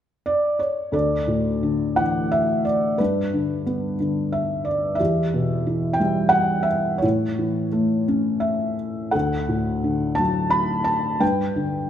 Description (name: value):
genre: classical, lyrical solo piano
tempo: 88 BPM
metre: 3/4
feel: rubato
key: D major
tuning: A4 = 443 Hz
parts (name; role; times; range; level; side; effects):
- felt-muted upright piano; solo; 0.3-11.9 s; D2 to B5; -20 LUFS; equal; none
room: moderate scoring stage reverb, RT60 1.6 s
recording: minimal, uncompressed stereo recording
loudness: -20 LUFS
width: side -10 dB against mid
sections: 0.9-11.9 A section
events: none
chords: 0.0 N.C.; 0.9 Dsus2; 3.0 G; 5.0 Em; 7.0 A; 9.1 D; 11.2 G